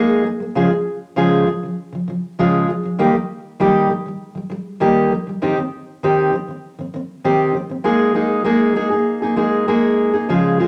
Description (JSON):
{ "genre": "pop", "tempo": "99 BPM", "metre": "4/4", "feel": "straight", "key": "Ab major", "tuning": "A4 = 440 Hz", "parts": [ { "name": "fingerpicked steel-string acoustic guitar", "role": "solo", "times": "0.0-10.7 s", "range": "Db3 to Ab4", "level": "-18 LUFS", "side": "equal", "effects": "none" } ], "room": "moderate large studio reverb, RT60 1.2 s", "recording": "none", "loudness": "-18 LUFS", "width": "mono", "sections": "0.0-7.9 A section; 7.9-10.7 B section", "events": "none", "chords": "0.0 Absus2; 0.6 Db; 3.0 Eb; 5.4 Cm/Eb; 7.9 Absus2", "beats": "| 0.56 1.17 1.77 2.38 | 2.99 3.60 4.21 4.82 | 5.42 6.03 6.64 7.25 | 7.86 8.46 9.07 9.68 | 10.29" }